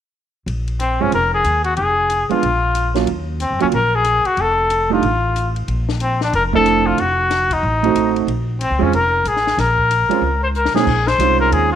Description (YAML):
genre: jazz, small-group swing and bop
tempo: 185 BPM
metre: 4/4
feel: swing 62% on 8ths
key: Bb minor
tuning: A4 = 440 Hz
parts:
  - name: upright bass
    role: bass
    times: 0.5-11.8 s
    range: F1 to Gb2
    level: -21 LUFS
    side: equal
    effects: none
  - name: compact cocktail drum kit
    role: drums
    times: 0.5-11.6 s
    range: crash cymbal, hi-hat, kick drum, ride cymbal, snare drum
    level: -28 LUFS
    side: left 6 dB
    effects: none
  - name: warm trumpet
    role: melody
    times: 0.8-11.8 s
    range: C4 to C5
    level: -17 LUFS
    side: left 2 dB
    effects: slapback echo
  - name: clear grand piano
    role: accompaniment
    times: 1.0-11.7 s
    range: Bb2 to Gb4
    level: -20 LUFS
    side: right 12 dB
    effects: none
room: light reverb, small room ambience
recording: 1960s-style stereo with parts hard left and right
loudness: -14 LUFS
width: side -9 dB against mid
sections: 0.5-10.9 A section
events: drum fill 10.5-10.9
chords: 0.5 Bb7(no3); 1.8 Fdim; 2.4 Bb5; 3.1 Ebm; 4.4 F; 5.7 Bbmaj9#11; 7.0 F7b9; 8.3 Bbm9; 10.9 Bbm11